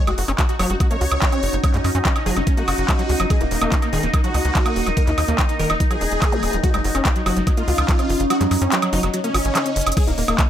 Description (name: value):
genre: psychedelic trance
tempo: 144 BPM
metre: 4/4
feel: straight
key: unclear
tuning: A4 = 439 Hz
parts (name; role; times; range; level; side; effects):
- dense compressed supersaw; melody; 0.0-10.4 s; Gb3 to Db5; -26 LUFS; equal; phaser, cassette tape, sidechain pumping, digital delay
- overtone-sweeping drone; sustained chords; 0.0-10.5 s; Eb4 to Eb5; -28 LUFS; left 2 dB; chorus, built-in reverb, sidechain pumping
- deep dark ambient pad; texture; 0.1-10.5 s; Bb3 to Eb6; -29 LUFS; right 1 dB; chorus, built-in reverb, sidechain pumping
- overdriven acid bass; riff; 0.1-10.4 s; Db3 to Gb4; -27 LUFS; moving between left 5 dB and right 5 dB; distortion, auto-pan, cassette tape, sidechain pumping, digital delay
- tight sequencer bass; bass; 0.1-10.3 s; Eb1 to Gb2; -22 LUFS; equal; none
- techno drum kit; drums; 0.1-10.5 s; crash cymbal, handclaps, hi-hat, woodblock; -24 LUFS; right 2 dB; overdrive
- electronic kick drum; drums; 0.4-10.5 s; none; -19 LUFS; equal; overdrive
- zap; sound effects; 6.3-6.4 s; none; -30 LUFS; equal; none
room: light reverb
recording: none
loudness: -17 LUFS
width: side -10 dB against mid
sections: 0.0-10.5 A section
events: filter sweep on acid bass 0.0-10.5; kick drops out 8.3-10.0; drum fill 9.8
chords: 0.0 Gb5; 3.3 Eb5; 6.6 Gb5; 10.0 Eb5